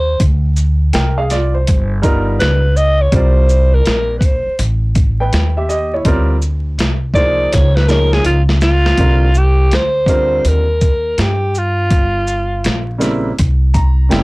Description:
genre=hip hop, jazz-hop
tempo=82 BPM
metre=4/4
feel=swing 64% on 16ths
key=C minor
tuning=A4 = 440 Hz
part: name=breathy alto saxophone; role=melody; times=0.0-13.0 s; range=F4 to D#5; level=-16 LUFS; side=equal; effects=none
part: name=upright bass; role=bass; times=0.0-14.2 s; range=F#1 to G2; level=-14 LUFS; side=equal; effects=transformer saturation
part: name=boom bap sampler-style drum kit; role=drums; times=0.2-14.2 s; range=hi-hat, kick drum, shaker, snare drum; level=-16 LUFS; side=equal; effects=none
part: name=warm upright piano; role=accompaniment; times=0.9-14.2 s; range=Db3 to Bb5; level=-19 LUFS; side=right 1 dB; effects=none
room=little or no reverb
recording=blown-out, overdriven recording, vinyl crackle, overdrive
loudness=-11 LUFS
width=side -23 dB against mid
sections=0.0-9.0 A section; 9.0-14.2 B section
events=alto saxophone solo 0.0-9.0; drum fill 7.5-9.0; upright piano fill 13.4-14.2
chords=0.2 C9sus4; 1.7 G7alt; 3.1 Csus2; 4.6 A7(no3); 6.1 Dm7b5; 7.5 Dbadd9; 9.0 Cm9; 11.9 Gm7b5; 13.4 C7b9

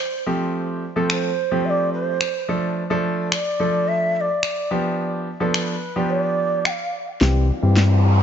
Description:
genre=dance-pop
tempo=108 BPM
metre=4/4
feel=straight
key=F major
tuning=A4 = 440 Hz
part: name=mellow bansuri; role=melody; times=0.0-7.1 s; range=B4 to G5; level=-24 LUFS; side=right 1 dB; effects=dub echo
part: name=bright concert grand piano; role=accompaniment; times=0.3-8.2 s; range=E3 to A4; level=-23 LUFS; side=right 1 dB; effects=low-pass filter
part: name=electronic finger snaps and snare drum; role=drums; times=1.1-7.9 s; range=none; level=-24 LUFS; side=left 1 dB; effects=overdrive
part: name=sub bass with octave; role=bass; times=7.2-8.2 s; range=C2 to G2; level=-15 LUFS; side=left 1 dB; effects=none
part: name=riser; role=sound effects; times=7.5-8.2 s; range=none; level=-26 LUFS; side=equal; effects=none
room=light reverb, small room ambience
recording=nothing above 7.6 kHz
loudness=-19 LUFS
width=side -8 dB against mid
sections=0.0-7.2 A section; 7.2-8.2 B section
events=kick muted 6.1-7.2; build-up 7.2-8.2; drum fill 7.2-8.2; riser 7.5-8.2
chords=0.3 Fadd9; 2.5 Dm/F; 4.7 G7; 7.2 C

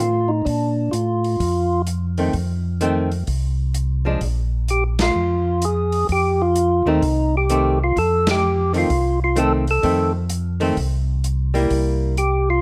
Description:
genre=soul jazz organ trio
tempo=128 BPM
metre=4/4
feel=swing 66% on 8ths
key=F mixolydian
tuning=A4 = 440 Hz
part: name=percussive tonewheel organ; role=melody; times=0.0-1.8, 4.7-12.6 s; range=D4 to A4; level=-22 LUFS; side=equal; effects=slow rotary speaker, overdrive
part: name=mellow tonewheel organ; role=bass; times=0.0-12.6 s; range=Bb1 to Bb2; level=-23 LUFS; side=equal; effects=slow rotary speaker
part: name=open jazz drum kit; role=drums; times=0.0-12.3 s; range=hi-hat, kick drum, ride cymbal, snare drum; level=-30 LUFS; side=equal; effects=none
part: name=archtop guitar, miked and amplified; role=accompaniment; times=2.2-12.1 s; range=Eb3 to E4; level=-24 LUFS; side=equal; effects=none
room=little or no reverb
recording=close, detailed microphones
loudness=-20 LUFS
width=mono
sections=0.0-12.6 A section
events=band accent 4.9, 8.2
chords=0.5 Bb; 2.3 F7; 4.2 Bb5; 6.1 F7; 11.7 C7

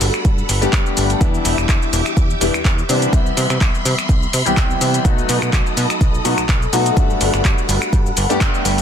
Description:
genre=filtered disco house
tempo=125 BPM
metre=4/4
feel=swing 54% on 16ths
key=unclear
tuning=A4 = 437 Hz
part: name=clear grand piano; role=accompaniment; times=0.0-8.8 s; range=E3 to G4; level=-21 LUFS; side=left 2 dB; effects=phaser, sidechain pumping
part: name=phased string machine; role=sustained chords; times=0.0-8.8 s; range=G4 to D6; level=-24 LUFS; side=left 1 dB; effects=ensemble chorus, phaser, sidechain pumping
part: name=plucky analog bass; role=bass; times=0.0-8.8 s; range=E1 to C3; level=-21 LUFS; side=right 1 dB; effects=sidechain pumping
part: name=punchy analog drum machine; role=drums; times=0.0-8.8 s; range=cabasa, finger snaps, handclaps, hi-hat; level=-21 LUFS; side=equal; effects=sidechain pumping on perc, sidechain pumping on hats, soft clipping on snare
part: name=electronic kick drum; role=drums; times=0.2-8.5 s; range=none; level=-16 LUFS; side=equal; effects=none
room=digital ambience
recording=dense, heavily limited modern master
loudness=-14 LUFS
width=side -8 dB against mid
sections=0.0-8.8 A section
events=band accent 8.4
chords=0.0 Gmaj9; 1.2 Em7; 2.9 Cmaj7; 5.1 B7; 7.0 Gmaj9

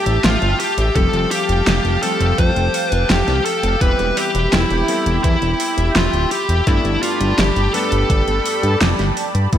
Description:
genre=synthwave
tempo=84 BPM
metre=4/4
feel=straight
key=unclear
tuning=A4 = 440 Hz
part: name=smooth overdriven lead guitar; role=melody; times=0.0-8.8 s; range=E4 to C5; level=-20 LUFS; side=equal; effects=ping-pong delay
part: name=soft supersaw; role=sustained chords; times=0.0-9.6 s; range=G4 to B5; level=-23 LUFS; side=right 1 dB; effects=analog chorus, sidechain pumping, low-pass filter
part: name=warm electric grand piano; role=stabs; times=0.0-9.6 s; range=G2 to B4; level=-26 LUFS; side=left 4 dB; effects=analog chorus, low-pass filter
part: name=fat analog bass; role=bass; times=0.1-9.6 s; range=D1 to G2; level=-18 LUFS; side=equal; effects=none
part: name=pop drum kit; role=drums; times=0.1-9.6 s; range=hi-hat, snare drum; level=-21 LUFS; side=equal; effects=overdrive, high-pass filter on hats, high-pass filter on snare, high-pass filter on room, gated reverb
part: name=electronic kick drum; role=drums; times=1.0-9.6 s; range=none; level=-17 LUFS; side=equal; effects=overdrive
room=moderate lush hall reverb, RT60 1.9 s, digital ambience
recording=bright 1980s-style digital production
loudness=-14 LUFS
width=side -10 dB against mid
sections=0.0-9.5 A section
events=kick drops out 8.8-9.5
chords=0.0 Am7; 1.0 Fadd9; 3.8 Cmaj7/E; 6.7 Gadd9

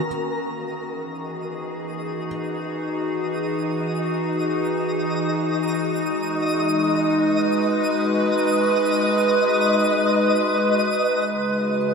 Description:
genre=ambient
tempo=free time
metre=none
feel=none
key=unclear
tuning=A4 = 440 Hz
part: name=evolving wavetable pad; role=sustained chords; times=0.0-11.9 s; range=C#3 to B4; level=-21 LUFS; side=equal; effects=chorus, built-in reverb
part: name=felt-muted upright piano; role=arpeggios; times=0.0-2.3 s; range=A#5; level=-42 LUFS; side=left 1 dB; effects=diffuse ambient delay
part: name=twinkling granular texture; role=texture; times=0.0-11.9 s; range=C#5 to D#6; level=-26 LUFS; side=left 2 dB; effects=built-in reverb
room=wet huge ambient reverb, RT60 7.7 s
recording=none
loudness=-20 LUFS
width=side -5 dB against mid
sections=0.1-11.3 A section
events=fade-in on ambient pad 0.1-11.3; fade-in on synth texture 0.1-11.3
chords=0.1 Emaj9; 5.7 G#m7; 11.3 C#7(no3)

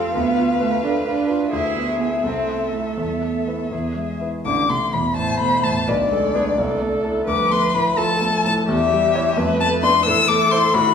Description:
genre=quick classical-period movement for piano quartet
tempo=86 BPM (dotted quarters)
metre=6/8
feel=rubato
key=A minor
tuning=A4 = 439 Hz
part: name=dark violin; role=melody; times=0.0-10.9 s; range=D5 to E6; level=-20 LUFS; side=left 5 dB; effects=none
part: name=warm cello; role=second line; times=0.0-10.9 s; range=D2 to E4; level=-25 LUFS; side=right 5 dB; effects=none
part: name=warm grand piano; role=accompaniment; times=0.0-10.9 s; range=A1 to D5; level=-24 LUFS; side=equal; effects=none
part: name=warm viola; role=accompaniment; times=0.0-10.9 s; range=F#4 to C5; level=-26 LUFS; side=right 3 dB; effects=none
room=wet recital hall reverb, RT60 1.3 s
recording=recorded in a church or concert hall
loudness=-17 LUFS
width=side -7 dB against mid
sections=0.0-4.5 A section; 4.5-10.9 B section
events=none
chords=0.2 Bdim/D; 1.5 E7/D; 2.2 Am/C; 3.0 Esus4; 3.7 E; 4.5 Am; 5.9 G#dim/B; 6.6 Am/C; 7.3 Dm; 8.7 C#dim/E; 9.4 Dm/F; 10.1 Am

